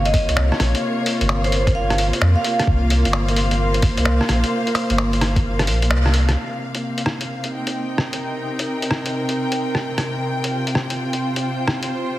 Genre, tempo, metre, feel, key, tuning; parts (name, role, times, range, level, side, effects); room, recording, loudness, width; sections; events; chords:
future garage; 130 BPM; 4/4; swing 65% on 16ths; C phrygian; A4 = 440 Hz
vibraphone with medium hard mallets; melody; 0.0-2.7 s; C5 to F5; -25 LUFS; right 3 dB; tape echo
rich symphonic string section; sustained chords; 0.0-12.2 s; C3 to G5; -22 LUFS; equal; sidechain pumping
warm sub bass; bass; 0.0-6.4 s; G1 to F2; -19 LUFS; equal; sidechain pumping
electronic kick drum; drums; 0.1-5.4 s; -19 LUFS; equal; overdrive, studio reverb
lo-fi sampler-style drum kit; drums; 0.1-11.9 s; finger snaps, hi-hat, rim click; -23 LUFS; equal; overdrive, studio reverb
light reverb, small room ambience; heavily compressed radio sound, multiband compression; -18 LUFS; side -15 dB against mid
0.0-6.4 A section; 6.4-12.2 B section
kick drops out 5.9-6.4; band accent 5.9
0.0 Bbm; 6.4 Cm7